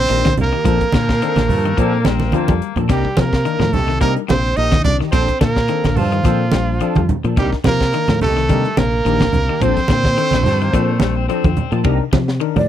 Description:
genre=afrobeat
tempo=107 BPM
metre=4/4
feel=swing 55% on 16ths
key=unclear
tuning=A4 = 439 Hz
part: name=brilliant trumpet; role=melody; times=0.0-11.3 s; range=F4 to Eb5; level=-21 LUFS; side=right 2 dB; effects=none
part: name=bright alto saxophone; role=second line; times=0.0-11.3 s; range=F3 to Eb4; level=-24 LUFS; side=right 5 dB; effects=none
part: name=electric guitar at the edge of break-up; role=arpeggios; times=0.0-12.7 s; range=C3 to G3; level=-23 LUFS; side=left 11 dB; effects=none
part: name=fingered electric bass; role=bass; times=0.0-12.7 s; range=Bb1 to C3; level=-19 LUFS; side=equal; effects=none
part: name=barky tine electric piano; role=accompaniment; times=0.1-12.6 s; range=C4 to Bb4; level=-25 LUFS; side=left 13 dB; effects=overdrive
part: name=clean electric guitar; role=stabs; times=0.1-12.4 s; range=F3 to A4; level=-28 LUFS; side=right 9 dB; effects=ensemble chorus
part: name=tight funk drum kit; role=drums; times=0.1-12.6 s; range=hi-hat, kick drum, ride cymbal, snare drum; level=-20 LUFS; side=equal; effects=none
part: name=congas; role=percussion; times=0.3-12.7 s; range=none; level=-20 LUFS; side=right 3 dB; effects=none
part: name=raspy baritone saxophone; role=second line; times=0.9-2.8, 10.2-11.8 s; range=F3 to C4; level=-28 LUFS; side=left 14 dB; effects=none
part: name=breathy mellow jazz flute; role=melody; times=12.6-12.7 s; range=D5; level=-17 LUFS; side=right 1 dB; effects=none
room=little or no reverb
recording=dry, close 1970s-style studio recording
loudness=-14 LUFS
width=side -11 dB against mid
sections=0.0-11.8 A section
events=drum fill 2.2-2.9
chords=0.0 Bbmaj9

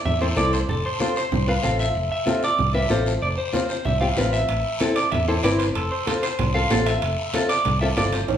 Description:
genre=latin, cumbia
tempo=189 BPM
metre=4/4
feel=straight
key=unclear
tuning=A4 = 440 Hz
part: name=clean electric guitar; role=melody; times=0.1-8.4 s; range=A4 to F5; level=-24 LUFS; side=right 1 dB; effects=spring reverb
part: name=fingered electric bass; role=bass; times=0.1-8.4 s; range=F1 to E2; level=-25 LUFS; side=equal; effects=none
part: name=congas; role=percussion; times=0.1-8.4 s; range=none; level=-29 LUFS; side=right 3 dB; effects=none
part: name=guiro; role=percussion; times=0.1-8.4 s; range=none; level=-33 LUFS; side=left 4 dB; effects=none
part: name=nylon-string guitar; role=accompaniment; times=0.2-8.2 s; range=C4 to C5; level=-25 LUFS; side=left 2 dB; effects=none
part: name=timbales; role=percussion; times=4.5-8.4 s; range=none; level=-30 LUFS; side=right 6 dB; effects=none
room=wet large studio reverb, RT60 0.9 s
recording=band playing live in one room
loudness=-19 LUFS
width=side -9 dB against mid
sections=0.0-8.4 A section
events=none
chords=0.0 Am; 0.7 F; 4.5 Am; 5.8 F

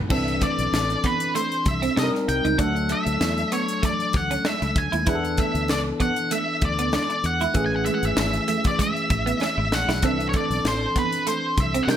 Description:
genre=polished 1980s jazz-funk pop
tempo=97 BPM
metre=4/4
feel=swing 54% on 16ths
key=unclear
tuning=A4 = 439 Hz
part: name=overdriven tine electric piano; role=accompaniment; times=0.0-12.0 s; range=D#3 to Bb4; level=-27 LUFS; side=left 2 dB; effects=wide subtle chorus
part: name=octave-fuzz lead guitar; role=melody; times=0.1-12.0 s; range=B4 to G#5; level=-25 LUFS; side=equal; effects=distortion
part: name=clean electric guitar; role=riff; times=0.1-12.0 s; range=G#3 to E4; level=-29 LUFS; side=right 8 dB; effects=ensemble chorus
part: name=fingered electric bass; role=bass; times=0.1-12.0 s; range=G#1 to C3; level=-27 LUFS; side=equal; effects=none
part: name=crisp fusion drum kit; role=drums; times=0.1-12.0 s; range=crash cymbal, hi-hat, kick drum, snare drum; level=-26 LUFS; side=equal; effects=gated reverb
part: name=congas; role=percussion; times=0.1-12.0 s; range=none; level=-37 LUFS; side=left 3 dB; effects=none
room=light reverb, small room ambience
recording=none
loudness=-20 LUFS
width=side -10 dB against mid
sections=0.1-12.0 A section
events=drum fill 9.4-10.0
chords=0.1 C69; 2.0 Cm7; 2.6 D; 5.1 E7sus4; 7.6 Amaj7; 10.0 C69

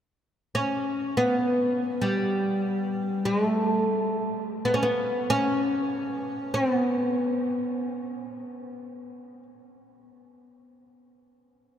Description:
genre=caucasian folk, Caucasian lament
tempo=free time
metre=none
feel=none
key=unclear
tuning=A4 = 440 Hz
part: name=oud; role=solo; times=0.5-9.4 s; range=G3 to C#4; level=-24 LUFS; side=equal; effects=none
room=wet cathedral reverb, RT60 6.2 s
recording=in a vast, echoing space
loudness=-24 LUFS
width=side -9 dB against mid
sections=0.0-11.8 A section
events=none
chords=none

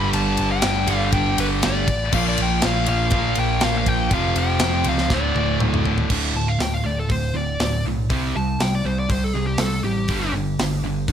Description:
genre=hard rock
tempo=120 BPM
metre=4/4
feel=straight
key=D minor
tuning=A4 = 436 Hz
part: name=dark smooth lead guitar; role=melody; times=0.0-10.3 s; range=G4 to A5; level=-26 LUFS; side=left 1 dB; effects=overdrive, analog delay
part: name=cranked stack guitar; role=riff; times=0.0-6.1 s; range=D2 to Bb3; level=-28 LUFS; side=left 1 dB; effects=overdrive
part: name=high-gain distorted guitar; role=riff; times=0.0-11.1 s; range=D2 to C4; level=-27 LUFS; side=left 11 dB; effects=distortion
part: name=overdriven electric guitar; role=riff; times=0.0-11.1 s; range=D2 to C4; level=-25 LUFS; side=right 8 dB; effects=none
part: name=overdriven picked electric bass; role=bass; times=0.0-11.1 s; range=D1 to C#2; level=-25 LUFS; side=equal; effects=none
part: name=tight metal drum kit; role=drums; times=0.1-11.1 s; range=crash cymbal, hi-hat, kick drum, ride cymbal, snare drum, toms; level=-24 LUFS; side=equal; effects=none
room=light reverb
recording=none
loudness=-18 LUFS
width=side -9 dB against mid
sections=0.0-6.1 A section; 6.1-11.1 B section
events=drum fill 5.1-6.1; lead electric guitar solo 6.1-11.1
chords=0.0 G5; 2.1 Bb5; 4.1 F5; 5.1 D5; 8.1 C5; 10.1 G5

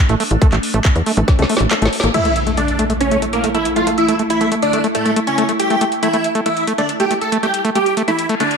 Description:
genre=psychedelic trance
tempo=139 BPM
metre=4/4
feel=straight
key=unclear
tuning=A4 = 440 Hz
part: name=evolving wavetable pad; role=sustained chords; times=0.1-8.6 s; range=A3 to E4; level=-23 LUFS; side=right 1 dB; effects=ensemble chorus, built-in reverb, phaser, sidechain pumping
part: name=overdriven acid bass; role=riff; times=0.1-8.4 s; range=A3 to Bb3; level=-20 LUFS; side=moving between left 5 dB and right 6 dB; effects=distortion, auto-pan, sidechain pumping, tape echo
part: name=tight sequencer bass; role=bass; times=0.1-2.1 s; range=A1 to E2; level=-16 LUFS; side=equal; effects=none
part: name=drum and bass drum kit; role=drums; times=0.1-8.6 s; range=crash cymbal, handclaps, hi-hat, snare drum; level=-23 LUFS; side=equal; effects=none
part: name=electronic kick drum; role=drums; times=0.4-1.4 s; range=none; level=-12 LUFS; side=equal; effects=none
part: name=dense compressed supersaw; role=melody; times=2.1-8.6 s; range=A3 to A4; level=-17 LUFS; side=right 1 dB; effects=phaser, sidechain pumping, tape echo
part: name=impact and reverse cymbal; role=sound effects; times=2.1-3.9, 8.3-8.6 s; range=none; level=-24 LUFS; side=equal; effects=none
room=moderate digital room reverb, RT60 1.1 s, digital ambience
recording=none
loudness=-14 LUFS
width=side -6 dB against mid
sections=0.0-2.1 A section; 2.1-8.6 B section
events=filter sweep on acid bass 0.0-2.1, 2.1-8.6; drum fill 1.3-2.1; kick drops out 1.7-2.1; band accent 2.0; impact 2.1-3.9; reverse cymbal 8.3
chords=0.0 A5

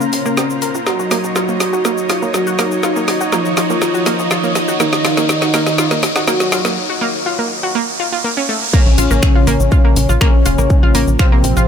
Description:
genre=melodic techno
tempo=122 BPM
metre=4/4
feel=straight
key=Bb minor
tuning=A4 = 440 Hz
part: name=analog synth brass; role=melody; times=0.0-11.7 s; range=C3 to Gb4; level=-18 LUFS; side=equal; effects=chorus, sidechain pumping, dub echo
part: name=lush unison pad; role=sustained chords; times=0.0-6.7 s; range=Eb4 to Bb5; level=-26 LUFS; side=right 1 dB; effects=chorus, sidechain pumping
part: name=analog pluck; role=arpeggios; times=0.0-11.7 s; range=A3 to F5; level=-21 LUFS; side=right 1 dB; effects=chorus, sidechain pumping, dub echo
part: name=deep house drum kit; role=drums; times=0.0-11.7 s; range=crash cymbal, finger snaps, hi-hat, shaker, snare drum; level=-20 LUFS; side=equal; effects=none
part: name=riser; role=sound effects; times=0.1-8.7 s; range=none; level=-24 LUFS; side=equal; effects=none
part: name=granular cloud pad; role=texture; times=0.0-6.8 s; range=Bb3 to C6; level=-24 LUFS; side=equal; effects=built-in reverb, sidechain pumping
part: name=tight sequencer bass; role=bass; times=0.1-11.7 s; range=Eb1 to Eb2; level=-19 LUFS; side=equal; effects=sidechain pumping, high-pass filter
part: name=analog drone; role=drone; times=9.6-11.7 s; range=Bb2 to F3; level=-28 LUFS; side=right 2 dB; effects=none
part: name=electronic kick drum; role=drums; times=8.7-11.3 s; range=none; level=-12 LUFS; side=equal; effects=distortion
room=light reverb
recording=none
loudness=-12 LUFS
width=side -8 dB against mid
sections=0.0-8.7 A section; 8.7-11.7 B section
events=build-up 0.0-8.7; drum fill 0.0-6.8; filter sweep on synth pluck 0.0-8.7; filter sweep on analog polysynth 0.0-8.7; riser 0.1-8.7; break 6.8-8.7; drop 8.7-11.7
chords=0.0 Bbmadd9; 0.9 Ebm7; 8.7 Bbmadd9

